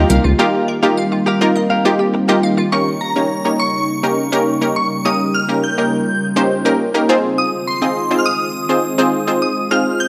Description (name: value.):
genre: pop.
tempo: 103 BPM.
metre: 4/4.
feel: straight.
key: unclear.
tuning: A4 = 441 Hz.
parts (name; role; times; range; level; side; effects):
analog pluck; accompaniment; 0.0-10.1 s; Bb3 to Eb5; -18 LUFS; equal; chorus.
glassy FM pad; sustained chords; 0.0-10.1 s; Db3 to F4; -24 LUFS; equal; ensemble chorus, built-in reverb, phaser.
glassy wavetable pluck; arpeggios; 0.0-2.7 s; F4 to F5; -29 LUFS; equal; chorus, phaser, tape echo.
direct-recorded clean electric guitar; riff; 0.0-2.6 s; G4 to F5; -24 LUFS; equal; subtle chorus.
shimmering bell with halo; melody; 2.7-10.1 s; Bb5 to G6; -23 LUFS; equal; ensemble chorus, tremolo, tape echo.
room: light reverb.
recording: dry, gritty hardware recording.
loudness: -16 LUFS.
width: mono.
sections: 0.0-2.7 A section; 2.7-10.1 B section.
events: none.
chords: 0.0 Ebadd9; 2.7 Eb7; 7.1 Fm7.